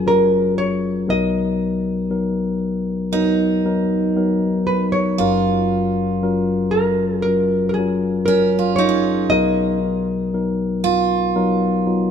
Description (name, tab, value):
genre	acoustic folk-pop ballad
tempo	58 BPM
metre	4/4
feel	straight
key	unclear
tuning	A4 = 444 Hz
part	nylon-string guitar	melody	0.0-10.8 s	G#4 to D#5	-20 LUFS	right 1 dB	none
part	mellow tine electric piano	accompaniment	0.0-12.1 s	F#1 to A#4	-19 LUFS	left 3 dB	none
part	picked steel-string acoustic guitar	arpeggios	0.0-12.1 s	C#4 to A#4	-22 LUFS	right 9 dB	none
room	light reverb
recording	minimal, uncompressed stereo recording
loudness	-16 LUFS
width	side -8 dB against mid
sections	0.0-12.1 A section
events	none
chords	0.0 F#maj7; 1.1 Bmaj7; 5.2 F#maj7; 9.3 Bmaj7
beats	0.05 | 1.07 2.10 3.12 4.15 | 5.18 6.22 7.25 8.28 | 9.30 10.33 11.35